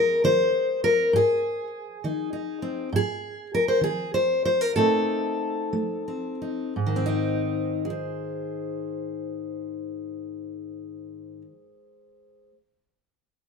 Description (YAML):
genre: folk, solo fingerstyle acoustic guitar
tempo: 56-67 BPM (dotted quarters)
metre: 6/8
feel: straight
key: Ab major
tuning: A4 = 440 Hz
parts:
  - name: fingerpicked steel-string acoustic guitar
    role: solo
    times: 0.0-12.6 s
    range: Ab2 to C5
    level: -24 LUFS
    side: left 1 dB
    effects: none
room: light reverb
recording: minimal, uncompressed stereo recording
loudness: -23 LUFS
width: side -5 dB against mid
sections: 0.0-2.9 A section; 2.9-6.8 B section; 6.8-11.1 C section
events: slowing down 2.9-6.8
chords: 0.0 Ebsus4; 1.1 Ab; 2.9 Ab5; 4.8 Adim; 6.8 Ab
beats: 0.23 | 1.13 2.02 | 2.92 3.83 | 4.76 5.73 | 6.77 7.84 | 8.91 9.99